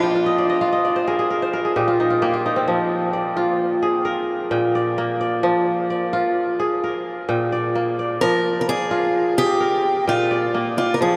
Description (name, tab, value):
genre	west african traditional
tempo	86 BPM (dotted quarters)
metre	12/8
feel	straight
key	F dorian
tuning	A4 = 442 Hz
part	picked acoustic archtop guitar	melody	0.0-1.7, 8.2-11.2 s	F4 to Bb4	-24 LUFS	equal	slapback echo
part	kora	arpeggios	0.0-11.2 s	Bb2 to G5	-22 LUFS	equal	none
room	wet huge ambient reverb, RT60 7.8 s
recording	in a vast, echoing space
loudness	-20 LUFS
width	mono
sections	0.0-11.2 A section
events	kora fill 0.0-2.7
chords	0.0 Fm; 1.3 N.C.; 2.7 Fm; 4.1 Bb; 5.4 Fm; 6.8 Bb; 8.2 Fm; 9.6 Bb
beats	0.60 1.29 1.98 | 2.67 3.37 4.06 4.75 | 5.45 6.14 6.83 7.53 | 8.22 8.92 9.61 10.31 | 11.00